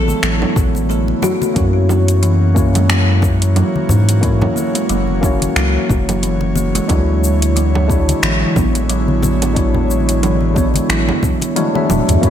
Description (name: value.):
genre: organic downtempo.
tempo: 90 BPM.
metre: 4/4.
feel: swing 57% on 16ths.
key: unclear.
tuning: A4 = 441 Hz.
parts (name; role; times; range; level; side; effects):
oud; melody; 0.0-0.9 s; A4; -27 LUFS; left 1 dB; digital delay.
airy breathy pad; sustained chords; 0.0-12.3 s; D3 to C#5; -23 LUFS; right 1 dB; chorus, sidechain pumping.
kalimba; arpeggios; 0.0-12.1 s; E3 to F#4; -20 LUFS; right 1 dB; ping-pong delay.
round analog bass; bass; 0.0-12.3 s; D1 to G#2; -16 LUFS; equal; sidechain pumping.
deep house drum kit; drums; 0.1-12.3 s; cabasa, congas, finger snaps, hi-hat, toms; -20 LUFS; right 2 dB; gated reverb.
congas; percussion; 0.1-12.2 s; none; -24 LUFS; left 2 dB; none.
electronic kick drum; drums; 0.6-12.3 s; none; -18 LUFS; equal; none.
tine electric piano; accompaniment; 1.5-12.3 s; G#3 to E5; -21 LUFS; left 3 dB; analog chorus, sidechain pumping, ping-pong delay.
room: moderate lush hall reverb, RT60 1.7 s, digital ambience.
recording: bright 1980s-style digital production.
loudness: -12 LUFS.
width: side -10 dB against mid.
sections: 0.0-12.2 A section.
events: drum fill 11.6-12.2.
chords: 0.0 Dmaj9; 1.6 F#7; 6.9 Dmaj9#11.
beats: 0.23 0.90 | 1.56 2.23 2.90 3.56 | 4.23 4.89 5.56 6.23 | 6.89 7.56 8.23 8.89 | 9.56 10.23 10.89 11.56 | 12.23.